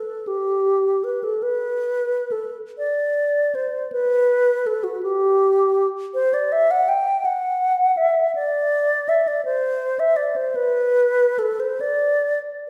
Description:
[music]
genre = classical, free, expressive piece for unaccompanied alto flute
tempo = 41-56 BPM (dotted quarters)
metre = 6/8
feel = rubato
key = unclear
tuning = A4 = 438 Hz
[part]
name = alto flute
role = solo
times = 0.0-12.4 s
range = F#4 to G5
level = -21 LUFS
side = equal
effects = none
[sound]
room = wet recital hall reverb, RT60 1.6 s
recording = heard from further back in the room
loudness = -21 LUFS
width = mono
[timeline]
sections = 0.0-12.7 A section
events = none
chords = none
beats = 0.29 | 1.44 2.79 | 3.93 5.03 | 6.16 7.26 | 8.37 9.46 | 10.56 11.82

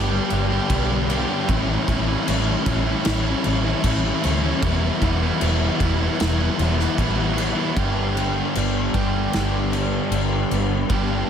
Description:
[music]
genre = rock, shoegaze and dream pop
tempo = 76 BPM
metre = 4/4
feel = straight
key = unclear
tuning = A4 = 440 Hz
[part]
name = biting overdriven guitar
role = riff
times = 0.0-11.3 s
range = E2 to G4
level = -24 LUFS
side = right 8 dB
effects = reverse reverb
[part]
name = crunchy overdriven guitar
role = riff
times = 0.0-11.3 s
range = G2 to E4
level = -24 LUFS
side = left 7 dB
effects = ensemble chorus
[part]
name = vintage muted fingered electric bass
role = bass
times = 0.0-11.2 s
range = E1 to D2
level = -24 LUFS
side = equal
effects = none
[part]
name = loose indie drum kit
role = drums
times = 0.3-11.1 s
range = crash cymbal, kick drum, snare drum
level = -27 LUFS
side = equal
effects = none
[sound]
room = moderate huge ambient reverb, RT60 4.4 s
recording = dreamy mix soaked in reverb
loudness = -19 LUFS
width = side -8 dB against mid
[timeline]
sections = 0.0-7.8 A section; 7.8-11.3 B section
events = none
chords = 0.0 G; 1.5 A7; 4.6 Em; 7.8 G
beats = 0.70 | 1.48 2.27 3.05 3.84 | 4.62 5.41 6.20 6.98 | 7.76 8.55 9.33 10.12 | 10.90

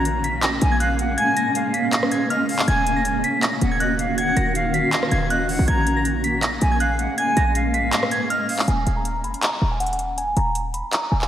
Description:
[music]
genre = hip hop, trap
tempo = 160 BPM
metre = 4/4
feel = half-time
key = unclear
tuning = A4 = 440 Hz
[part]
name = glassy synth bell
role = melody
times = 0.0-11.3 s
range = Gb5 to Cb7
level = -24 LUFS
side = right 1 dB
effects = chorus, low-pass filter, diffuse ambient delay
[part]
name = silver concert flute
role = second line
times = 0.0-8.7 s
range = Eb5 to Bb5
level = -26 LUFS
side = equal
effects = diffuse ambient delay
[part]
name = granular cloud pad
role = sustained chords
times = 0.0-8.6 s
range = Eb3 to Gb4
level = -24 LUFS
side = equal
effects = built-in reverb, ensemble chorus
[part]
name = short 808-style bass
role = bass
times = 0.0-11.3 s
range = Eb1 to Bb1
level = -23 LUFS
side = equal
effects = none
[part]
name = trap drum kit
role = drums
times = 0.1-11.3 s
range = handclaps, hi-hat, rim click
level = -26 LUFS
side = equal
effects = none
[sound]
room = wet lush hall reverb, RT60 1.9 s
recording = dreamy mix soaked in reverb, vinyl crackle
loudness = -18 LUFS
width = side -11 dB against mid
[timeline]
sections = 0.0-8.7 A section; 8.7-11.3 B section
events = kick muted 1.2-2.7, 7.9-8.7; filter sweep on synth bell 8.7-11.3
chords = 0.0 Bbm7; 2.7 Ebm7; 5.7 Bbm7; 8.7 Eb5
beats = 0.05 0.43 0.80 | 1.18 1.55 1.93 2.30 | 2.68 3.05 3.43 3.80 | 4.18 4.55 4.93 5.30 | 5.68 6.05 6.43 6.80 | 7.18 7.55 7.93 8.30 | 8.68 9.05 9.43 9.80 | 10.18 10.55 10.93

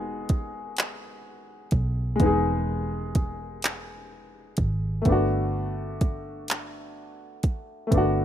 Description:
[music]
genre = slow six-eight R&B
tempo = 42 BPM (dotted quarters)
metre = 6/8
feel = straight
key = E major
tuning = A4 = 442 Hz
[part]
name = warm baby grand piano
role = accompaniment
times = 0.0-8.2 s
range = G#3 to G#4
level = -28 LUFS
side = left 2 dB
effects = none
[part]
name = vintage muted fingered electric bass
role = bass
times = 0.0-8.2 s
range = E1 to D2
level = -28 LUFS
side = right 1 dB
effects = none
[part]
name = smooth R&B drum kit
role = drums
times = 0.3-8.1 s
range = handclaps, hi-hat, kick drum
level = -25 LUFS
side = right 1 dB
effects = none
[sound]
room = digital ambience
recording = rough home demo mix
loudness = -24 LUFS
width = side -10 dB against mid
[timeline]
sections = 0.0-8.2 A section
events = none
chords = 0.0 Emaj9; 5.1 Gmaj9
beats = 0.77 | 2.20 3.63 | 5.06 6.49 | 7.92

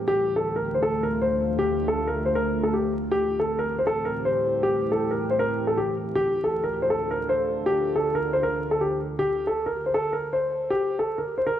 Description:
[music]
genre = hip hop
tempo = 158 BPM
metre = 4/4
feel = half-time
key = D minor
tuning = A4 = 440 Hz
[part]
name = deep dark ambient pad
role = sustained chords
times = 0.0-9.2 s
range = D2 to A4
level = -29 LUFS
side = equal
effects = chorus, built-in reverb
[part]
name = dark concert grand piano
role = melody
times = 0.1-11.6 s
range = G4 to C5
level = -23 LUFS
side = left 1 dB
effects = low-pass filter
[sound]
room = moderate lush hall reverb, RT60 2.0 s, small room ambience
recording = vinyl crackle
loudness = -22 LUFS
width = side -10 dB against mid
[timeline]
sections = 0.0-9.2 A section; 9.2-11.6 B section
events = none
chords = 0.1 Dm; 3.1 Am7; 6.1 Dm; 9.2 N.C.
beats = | 0.07 0.45 0.83 1.21 | 1.59 1.97 2.35 2.73 | 3.11 3.49 3.87 4.25 | 4.63 5.01 5.39 5.77 | 6.15 6.53 6.91 7.29 | 7.67 8.05 8.43 8.81 | 9.19 9.57 9.95 10.32 | 10.71 11.09 11.46

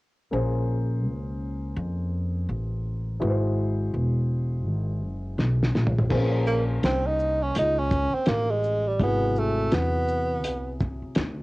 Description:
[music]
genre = hip hop, jazz-hop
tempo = 83 BPM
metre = 4/4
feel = swing 59% on 16ths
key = unclear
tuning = A4 = 440 Hz
[part]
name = dark grand piano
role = accompaniment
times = 0.3-11.4 s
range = C3 to C5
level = -31 LUFS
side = left 1 dB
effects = cassette tape
[part]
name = upright bass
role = bass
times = 0.3-11.4 s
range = E1 to F2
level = -26 LUFS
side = equal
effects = transformer saturation
[part]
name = cloth-damped thuddy drum kit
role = drums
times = 5.4-11.4 s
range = crash cymbal, hi-hat, kick drum, shaker, snare drum, toms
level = -26 LUFS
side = equal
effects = cassette tape
[part]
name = breathy tenor saxophone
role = melody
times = 6.5-10.8 s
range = G3 to Eb4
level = -25 LUFS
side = right 1 dB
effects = cassette tape
[sound]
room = light reverb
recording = home recording on cassette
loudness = -23 LUFS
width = side -21 dB against mid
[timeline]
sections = 0.3-6.1 A section; 6.1-11.4 B section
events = drum fill 5.4-6.1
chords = 0.3 Bbm9; 3.2 Ab7alt; 5.7 N.C.; 6.1 Bbm9; 9.0 Ab7alt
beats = | 0.32 1.04 1.77 2.49 | 3.21 3.94 4.66 5.38 | 6.10 6.83 7.55 8.27 | 8.99 9.72 10.44 11.16

